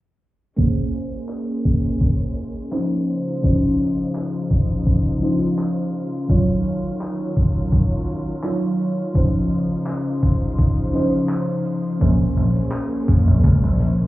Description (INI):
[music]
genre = vaporwave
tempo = 84 BPM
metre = 4/4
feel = swing 53% on 16ths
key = Db major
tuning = A4 = 440 Hz
[part]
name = mellow FM electric piano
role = accompaniment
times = 0.6-14.1 s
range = F3 to Db5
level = -22 LUFS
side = equal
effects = phaser, wide subtle chorus, cassette tape, analog delay
[part]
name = dark chamber string section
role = sustained chords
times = 0.6-14.1 s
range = Db3 to C5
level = -28 LUFS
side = equal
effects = none
[part]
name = big rock drum kit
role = drums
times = 0.6-14.1 s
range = handclaps, hi-hat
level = -41 LUFS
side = equal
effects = none
[part]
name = electronic kick drum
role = drums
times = 0.6-13.6 s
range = none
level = -19 LUFS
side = equal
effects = overdrive
[part]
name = vintage slap bass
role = bass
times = 12.0-13.9 s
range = Bb1 to F2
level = -16 LUFS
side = equal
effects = none
[sound]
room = little or no reverb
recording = heard muffled through a wall, club reverb, cassette tape, EQ, low-pass filter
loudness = -18 LUFS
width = side -17 dB against mid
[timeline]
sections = 0.6-14.1 A section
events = filter sweep 0.6-14.1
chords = 0.6 Bbm9; 3.1 Dbmaj9; 6.3 Ebm9; 9.2 Dbmaj9; 12.0 Bbm9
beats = | 0.58 1.30 2.01 2.73 | 3.44 4.16 4.87 5.58 | 6.30 7.01 7.73 8.44 | 9.15 9.87 10.58 11.30 | 12.01 12.73 13.44